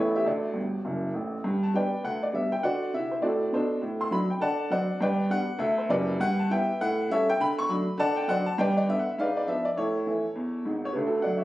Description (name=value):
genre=jazz, stride piano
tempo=202 BPM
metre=4/4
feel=swing 61% on 8ths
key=G major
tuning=A4 = 439 Hz
part: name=warm upright piano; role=solo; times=0.0-11.4 s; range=F#1 to C#6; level=-24 LUFS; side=equal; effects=none
room=moderate studio reverb, RT60 0.7 s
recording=recorded on a phone in the room, club reverb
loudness=-25 LUFS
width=side -16 dB against mid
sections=0.0-1.4 A section; 1.4-11.0 B section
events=upright piano fill 0.6-1.4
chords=0.3 D; 1.4 G; 2.6 D7; 3.8 D7/A; 5.0 G; 6.2 Em/G; 6.8 A7; 7.4 D; 8.0 D7; 8.6 G; 9.2 G#dim7; 9.8 A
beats=| 0.26 0.56 0.86 1.15 | 1.45 1.75 2.04 2.34 | 2.64 2.93 3.23 3.53 | 3.82 4.12 4.42 4.71 | 5.01 5.31 5.61 5.90 | 6.20 6.50 6.79 7.09 | 7.39 7.69 7.98 8.28 | 8.58 8.88 9.17 9.47 | 9.77 10.06 10.36 10.66 | 10.96 11.25